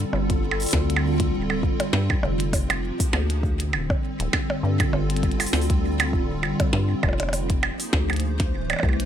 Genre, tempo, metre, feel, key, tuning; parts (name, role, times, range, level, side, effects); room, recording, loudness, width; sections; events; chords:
IDM; 100 BPM; 4/4; swing 56% on 16ths; A4 = 441 Hz
hollow soft pad; sustained chords; 0.0-9.1 s; C3 to C5; -27 LUFS; equal; ensemble chorus
deep acid bass; bass; 0.0-9.1 s; D1 to G2; -25 LUFS; equal
glitchy drum kit; drums; 0.0-9.1 s; hi-hat, percussion blips, snare drum; -26 LUFS; right 2 dB; small room ambience, digital delay
electronic kick drum; drums; 0.3-9.0 s; -25 LUFS; equal; small room ambience
little or no reverb; -21 LUFS; side -10 dB against mid
0.0-9.1 A section
0.0 Dm7; 2.5 Fm7; 3.4 Dm7; 7.3 Fm7; 8.2 Dsus2